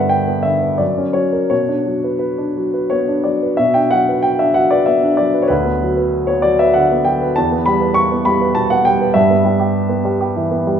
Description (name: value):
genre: classical, romantic character piece for solo piano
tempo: 84-102 BPM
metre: 3/4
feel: rubato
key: B minor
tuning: A4 = 440 Hz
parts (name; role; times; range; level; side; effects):
- warm grand piano; solo; 0.0-10.8 s; D2 to C#6; -13 LUFS; equal; none
room: wet recital hall reverb, RT60 1.5 s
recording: minimal, uncompressed stereo recording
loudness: -13 LUFS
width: side -8 dB against mid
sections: 0.0-3.6 A section; 3.6-10.8 A section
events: none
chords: 0.0 G; 0.8 F#; 1.5 Bm; 5.5 Bm/D; 7.4 Em; 9.2 Em/G